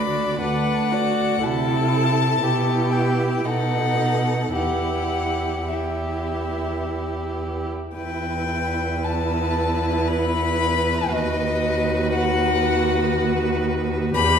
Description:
classical, slow romantic movement for string quartet; 52-61 BPM; 3/4; rubato; E minor; A4 = 440 Hz
dark violin; melody; 0.0-14.4 s; D#5 to B5; -25 LUFS; left 6 dB
rich violin; second line; 0.0-14.4 s; G4 to D5; -28 LUFS; equal
rich viola; accompaniment; 0.0-14.4 s; D4 to G4; -26 LUFS; right 2 dB
rich cello; bass; 0.0-14.4 s; D2 to C3; -24 LUFS; right 2 dB
wet recital hall reverb, RT60 1.5 s; heard from further back in the room; -20 LUFS; side -7 dB against mid
0.0-8.0 A section; 8.0-14.4 A section
0.0 Bm/D; 1.4 Am/C; 2.4 Em/B; 3.5 B7; 4.6 Em; 11.1 B/D#

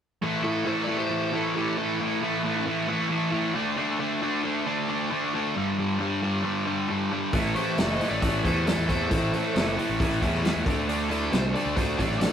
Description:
blues rock power trio and southern rock; 135 BPM; 4/4; straight; A dorian; A4 = 440 Hz
sludgy distorted guitar; riff; 0.2-12.3 s; G2 to D4; -25 LUFS; equal; overdrive
overdriven slide guitar; melody; 0.4-2.6, 7.6-12.3 s; G4 to D#5; -33 LUFS; left 2 dB
lead guitar through a small cranked amp; second line; 0.4-2.6, 7.6-12.3 s; E4 to C5; -36 LUFS; right 2 dB; overdrive
fuzz fingered electric bass; bass; 7.3-12.3 s; F#1 to E2; -30 LUFS; equal; overdrive
vintage drum kit; drums; 7.3-12.3 s; hi-hat, kick drum, snare drum; -28 LUFS; equal
moderate stone room reverb, RT60 1.0 s; rough rehearsal-room recording; -24 LUFS; side -8 dB against mid
0.2-12.3 A section
0.2 A5; 3.6 D5; 5.6 G5; 7.3 Am; 10.7 D5

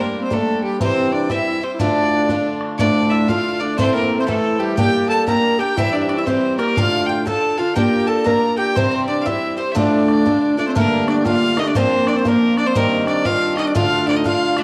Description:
celtic folk, Celtic polka; 120 BPM; 2/4; swing 64% on 8ths; D minor, G minor from 10.8 s; A4 = 440 Hz
bright fiddle; melody; 0.0-14.6 s; G4 to Bb5; -24 LUFS; equal; cassette tape
mellow alto saxophone; second line; 0.0-14.6 s; G3 to Bb4; -24 LUFS; equal; cassette tape
picked twelve-string acoustic guitar; accompaniment; 0.0-14.6 s; D2 to Bb4; -22 LUFS; equal; cassette tape
bodhran; percussion; 0.3-14.6 s; -28 LUFS; equal
bowl-back mandolin; second line; 2.8-14.6 s; G4 to Bb5; -30 LUFS; equal; cassette tape
moderate spring reverb, RT60 2.5 s; home recording on cassette; -18 LUFS; mono
0.0-2.8 A section; 2.8-10.8 A section; 10.8-14.6 B section
0.0 Gm; 0.8 C; 1.8 Dm; 3.8 Am; 4.8 Gm; 5.8 C; 6.8 Dm; 7.8 Bb; 8.8 C; 9.8 Dm; 10.8 Gmadd9; 11.8 Bbadd9; 12.8 Cmadd9; 13.8 Dm

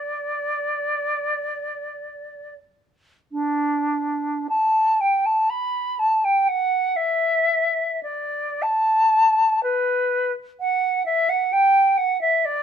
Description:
classical, free, expressive piece for unaccompanied flute; 34-66 BPM; 3/4; rubato; A4 = 439 Hz
silver concert flute; solo; 0.0-12.6 s; D4 to B5; -19 LUFS; equal
light reverb; -19 LUFS; side -8 dB against mid
0.0-3.3 A section; 3.3-12.6 B section

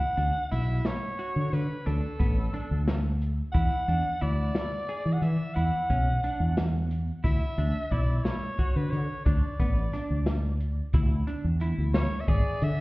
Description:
progressive instrumental, band music in an uneven meter; 178 BPM (eighths); 11/8; straight; D lydian; A4 = 437 Hz
breathy soprano saxophone; melody; 0.0-12.8 s; A4 to F#5; -33 LUFS; equal; tape echo
clean electric guitar; arpeggios; 0.2-12.6 s; B3 to G#4; -38 LUFS; right 2 dB; lush chorus
fretless electric bass; bass; 0.2-12.8 s; G#1 to E3; -27 LUFS; equal; ensemble chorus
open jazz drum kit; drums; 0.2-12.8 s; hi-hat, kick drum, snare drum; -28 LUFS; equal
light reverb; heard muffled through a wall, stone room reverb, EQ; -25 LUFS; side -21 dB against mid
0.0-10.9 A section; 10.9-12.8 B section
0.0 D5; 3.5 E7sus2; 7.2 D5; 10.9 E7

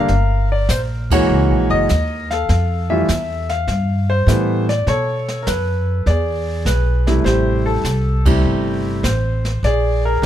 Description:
jazz piano trio; 101 BPM; 4/4; swing 69% on 8ths; A4 = 437 Hz
clear concert grand piano; melody; 0.0-10.3 s; C3 to F5; -19 LUFS; equal
upright bass; bass; 0.0-10.3 s; F#1 to B2; -18 LUFS; equal
jazz brush drum kit; drums; 0.1-10.3 s; brushed snare drum, hi-hat, kick drum, ride cymbal, snare drum; -23 LUFS; right 1 dB
little or no reverb; close, detailed microphones; -15 LUFS; side -11 dB against mid
0.0-10.3 A section
band accent 1.0, 8.1
0.1 Gm; 1.3 F#9; 2.5 Fmaj9; 4.9 Bsus2; 6.1 E7; 7.3 Am7; 9.6 Bb7

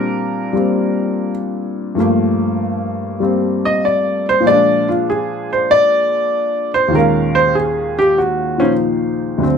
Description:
solo jazz; 97 BPM; 4/4; swing 69% on 8ths; Bb major; A4 = 438 Hz
warm upright piano; solo; 0.0-9.6 s; D2 to F5; -14 LUFS; left 1 dB
moderate studio ambience, RT60 0.5 s; -14 LUFS; side -7 dB against mid
0.0-2.0 A section; 2.0-9.6 B section
upright piano solo 2.0-9.6
0.0 Bb69; 2.0 Gm9; 4.4 Bb7; 6.9 Eb9sus4

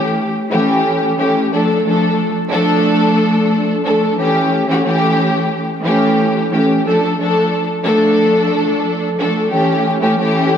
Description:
hip hop; 90 BPM; 4/4; swing 55% on 16ths; D harmonic minor; A4 = 440 Hz
dark studio string section; solo; 0.0-10.6 s; E3 to A4; -13 LUFS; equal; high-pass filter, low-pass filter, ping-pong delay
wet lush hall reverb, RT60 1.7 s, studio ambience; dreamy mix soaked in reverb, vinyl crackle; -13 LUFS; side -8 dB against mid
0.0-10.6 A section
0.0 A7; 1.5 Dm; 4.2 A7; 6.8 Dm; 9.5 A7

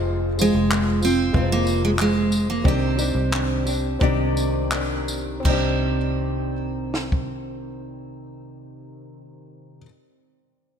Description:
acoustic pop; 81-95 BPM; 4/4; straight; C minor; A4 = 440 Hz
felt-muted upright piano; accompaniment; 0.0-10.8 s; Ab3 to F5; -31 LUFS; left 4 dB
nylon-string guitar; accompaniment; 0.0-9.9 s; F2 to G4; -28 LUFS; left 1 dB; double-tracked left and right
vintage muted fingered electric bass; bass; 0.0-9.8 s; F1 to C2; -25 LUFS; equal
picked steel-string acoustic guitar; melody; 0.4-9.8 s; Ab3 to C4; -24 LUFS; right 3 dB; digital delay
compact cocktail drum kit; drums; 0.4-7.3 s; crash cymbal, handclaps, kick drum, snare drum, tambourine; -26 LUFS; equal
light reverb, studio reverb; bright 1980s-style digital production; -19 LUFS; side -8 dB against mid
0.0-5.4 A section; 5.4-8.4 B section
slowing down 0.1-5.4
0.0 Fm; 2.7 Cmadd9

